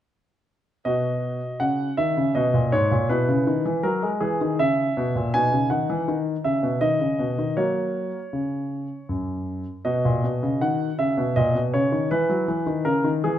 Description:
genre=classical-period piano sonatina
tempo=80 BPM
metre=3/4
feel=rubato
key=B major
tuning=A4 = 441 Hz
part: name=clear grand piano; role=solo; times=0.8-13.4 s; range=F#2 to G#5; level=-21 LUFS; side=equal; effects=none
room=moderate recital hall reverb, RT60 1.2 s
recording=close, detailed microphones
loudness=-21 LUFS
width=side -11 dB against mid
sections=0.9-13.4 A section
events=none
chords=0.9 B; 3.1 E/B; 5.3 B; 7.6 F#; 9.9 B; 12.1 E5

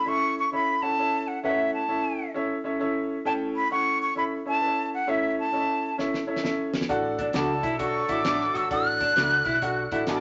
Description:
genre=uptempo 1960s-style soul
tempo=132 BPM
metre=4/4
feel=swing 65% on 8ths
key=unclear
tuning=A4 = 441 Hz
part: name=breathy concert flute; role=melody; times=0.0-10.1 s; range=E5 to F#6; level=-27 LUFS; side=equal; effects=none
part: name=warm upright piano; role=accompaniment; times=0.0-10.2 s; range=A2 to A5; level=-31 LUFS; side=equal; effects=none
part: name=warm soul drum kit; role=drums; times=6.0-10.2 s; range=hi-hat, kick drum, snare drum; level=-35 LUFS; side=equal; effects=none
part: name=warm horn section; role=second line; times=6.9-10.2 s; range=F#3 to A4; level=-36 LUFS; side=equal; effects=none
part: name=vintage muted fingered electric bass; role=bass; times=6.9-10.2 s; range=G#1 to C#2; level=-40 LUFS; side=equal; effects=none
part: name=electric guitar through a small old amp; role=riff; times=7.2-10.0 s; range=D4 to F#4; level=-34 LUFS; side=equal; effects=none
part: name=electric guitar through a small old amp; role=stabs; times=7.3-10.2 s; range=D4 to D5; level=-34 LUFS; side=equal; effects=none
room=wet studio reverb, RT60 0.9 s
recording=nothing above 7.6 kHz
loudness=-26 LUFS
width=mono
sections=0.0-10.2 A section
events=drum fill 6.0-6.9; upright piano fill 9.9-10.2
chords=0.0 A; 6.9 D

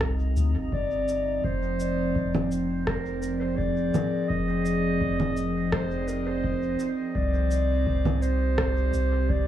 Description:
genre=ambient dub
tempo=84 BPM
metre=4/4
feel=straight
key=F dorian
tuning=A4 = 440 Hz
part: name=warbly tape-like pad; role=sustained chords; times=0.0-9.5 s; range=C3 to F5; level=-29 LUFS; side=right 1 dB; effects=chorus, built-in reverb
part: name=warm sub bass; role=bass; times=0.0-9.5 s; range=F1 to D2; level=-28 LUFS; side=equal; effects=none
part: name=electronic kick drum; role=drums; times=0.0-9.4 s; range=none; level=-32 LUFS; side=equal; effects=none
part: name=electronic rim click, shaker and congas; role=drums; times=0.0-9.1 s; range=none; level=-31 LUFS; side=right 1 dB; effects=dub echo
part: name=drifting glass-harmonics texture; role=texture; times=0.0-1.5 s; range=Eb4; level=-38 LUFS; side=right 3 dB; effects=chorus, built-in reverb
part: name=mellow clarinet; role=melody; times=0.7-9.5 s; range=Bb4 to Eb5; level=-30 LUFS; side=left 2 dB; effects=dub echo
room=light reverb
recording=small room ambience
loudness=-24 LUFS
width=side -11 dB against mid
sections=0.0-1.4 A section; 1.4-9.5 B section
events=none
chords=0.0 Cm; 1.4 Fm7; 7.2 Cm

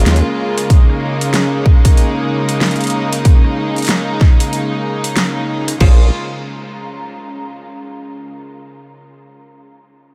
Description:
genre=glitch hop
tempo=94 BPM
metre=4/4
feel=swing 61% on 16ths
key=Bb minor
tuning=A4 = 441 Hz
part: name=rich studio string section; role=sustained chords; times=0.0-6.1 s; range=Db3 to F4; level=-22 LUFS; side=equal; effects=vintage 12-bit sampler grit, sidechain pumping
part: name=formant-sweep wobble bass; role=bass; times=0.0-0.2, 5.8-6.1 s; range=Bb1 to Eb2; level=-14 LUFS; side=equal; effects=chorus
part: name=dubstep drum kit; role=drums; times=0.0-6.0 s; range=crash cymbal, hi-hat, rim click, snare drum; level=-23 LUFS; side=equal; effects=studio ambience
part: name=deep dark ambient pad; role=texture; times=0.0-8.3 s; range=Db4 to Bb5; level=-28 LUFS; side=equal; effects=chorus, built-in reverb, sidechain pumping
part: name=electronic kick drum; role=drums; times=0.7-6.0 s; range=none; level=-11 LUFS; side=equal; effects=studio ambience
part: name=muted clav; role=stabs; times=5.8-6.1 s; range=Db4 to C5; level=-34 LUFS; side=equal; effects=none
room=light reverb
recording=none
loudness=-14 LUFS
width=mono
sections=0.0-5.8 A section; 5.8-8.4 B section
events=none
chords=0.0 Bbm7

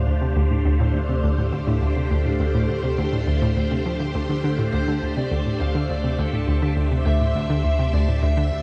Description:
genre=ambient, sequencer-driven space music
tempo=103 BPM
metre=4/4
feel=straight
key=D minor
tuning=A4 = 440 Hz
part: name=phased string machine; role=sustained chords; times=0.0-8.6 s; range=A3 to F5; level=-29 LUFS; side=equal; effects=ensemble chorus, phaser
part: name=hollow square pluck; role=riff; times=0.0-8.6 s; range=D2 to F3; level=-25 LUFS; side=equal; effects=chorus, delay
part: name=warm sub bass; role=bass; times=0.0-8.6 s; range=D2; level=-27 LUFS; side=equal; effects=none
part: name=bluesy overdriven lead guitar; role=melody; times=4.7-8.6 s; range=A4 to F5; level=-32 LUFS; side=equal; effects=distortion, delay
room=moderate huge ambient reverb, RT60 8.1 s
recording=dark, warm production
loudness=-22 LUFS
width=mono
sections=0.0-8.6 A section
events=none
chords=0.0 Dmadd9

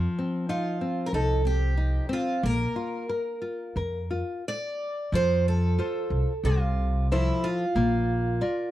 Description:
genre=fado-style ballad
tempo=91 BPM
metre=4/4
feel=rubato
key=Bb major, F major from 5.1 s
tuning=A4 = 441 Hz
part: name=nylon-string guitar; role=accompaniment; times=0.0-8.7 s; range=C3 to D5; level=-29 LUFS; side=left 2 dB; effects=none
part: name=upright bass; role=bass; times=0.0-8.4 s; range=Bb1 to F2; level=-26 LUFS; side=equal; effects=none
part: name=picked twelve-string acoustic guitar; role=melody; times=0.5-8.7 s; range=E4 to D5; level=-29 LUFS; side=right 2 dB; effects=none
room=little or no reverb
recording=dry, close 1970s-style studio recording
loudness=-24 LUFS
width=side -14 dB against mid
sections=0.0-5.1 A section; 5.1-8.7 B section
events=none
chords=0.0 F5; 2.4 Bb; 5.1 F; 7.8 Bb

